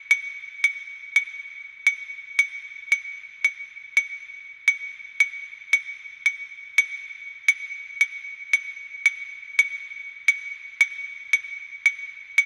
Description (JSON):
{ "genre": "latin", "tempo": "171 BPM", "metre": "4/4", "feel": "straight", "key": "none", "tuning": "none", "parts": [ { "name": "claves", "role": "percussion", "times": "0.1-12.5 s", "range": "none", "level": "-24 LUFS", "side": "equal", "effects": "none" } ], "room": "wet cathedral reverb, RT60 5.9 s", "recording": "in a vast, echoing space", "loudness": "-24 LUFS", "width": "mono", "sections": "0.0-7.1 A section; 7.1-12.5 B section", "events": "none", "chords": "none" }